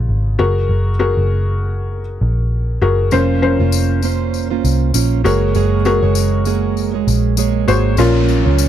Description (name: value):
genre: piano-driven pop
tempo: 99 BPM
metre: 4/4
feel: swing 56% on 16ths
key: unclear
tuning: A4 = 440 Hz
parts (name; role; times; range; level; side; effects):
- felt-muted upright piano; accompaniment; 0.0-8.7 s; Bb2 to Db5; -19 LUFS; left 5 dB; none
- vintage muted picked electric bass; bass; 0.0-8.7 s; F1 to Db2; -16 LUFS; equal; none
- fingerpicked plugged-in steel-string acoustic guitar; riff; 3.1-8.7 s; F2 to Db5; -19 LUFS; right 16 dB; none
- tambourine; percussion; 3.1-8.7 s; none; -26 LUFS; left 13 dB; none
- downlifter; sound effects; 8.0-8.7 s; none; -24 LUFS; left 1 dB; none
room: little or no reverb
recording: dry, close 1970s-style studio recording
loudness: -13 LUFS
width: side -10 dB against mid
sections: 0.0-8.0 A section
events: none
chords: 0.4 Gbadd9; 3.1 Bbmadd9/F; 5.2 Gbadd9; 8.0 Bbm